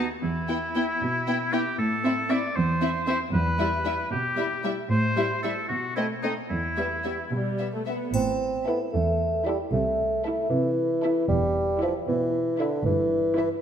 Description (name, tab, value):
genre	cinematic, playful, whimsical film cue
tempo	76 BPM (dotted quarters)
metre	6/8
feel	straight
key	E minor, A minor from 8.1 s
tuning	A4 = 440 Hz
part	warm studio violin section	melody	0.0-13.6 s	D#5 to G5	-37 LUFS	left 6 dB	none
part	clear oboe	second line	0.0-7.3 s	D#4 to D5	-28 LUFS	equal	none
part	dark studio violin section	second line	0.0-13.6 s	B3 to B4	-35 LUFS	left 4 dB	none
part	warm studio viola section	accompaniment	0.0-13.6 s	G3 to E4	-31 LUFS	right 1 dB	none
part	dark studio cello section	bass	0.0-13.5 s	E2 to C3	-30 LUFS	right 1 dB	none
part	mellow bassoon	accompaniment	8.1-13.5 s	D3 to C4	-24 LUFS	equal	none
part	dark studio double bass section	bass	8.1-13.3 s	E1 to C2	-31 LUFS	right 2 dB	none
part	triangle	percussion	8.1-9.2 s	none	-43 LUFS	left 3 dB	none
room	wet scoring stage reverb, RT60 2.1 s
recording	none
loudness	-23 LUFS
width	side -8 dB against mid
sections	0.0-8.1 A section; 8.1-13.6 B section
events	none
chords	0.2 Em; 1.8 Am; 3.3 Em; 4.9 Am7; 5.7 B7; 6.5 Em; 8.1 Am; 9.7 Am/C; 11.3 Em; 12.9 Em/G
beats	| 0.23 1.01 | 1.78 2.56 | 3.34 4.11 | 4.90 5.69 | 6.50 7.32 | 8.14 8.93 | 9.72 10.50 | 11.29 12.08 | 12.86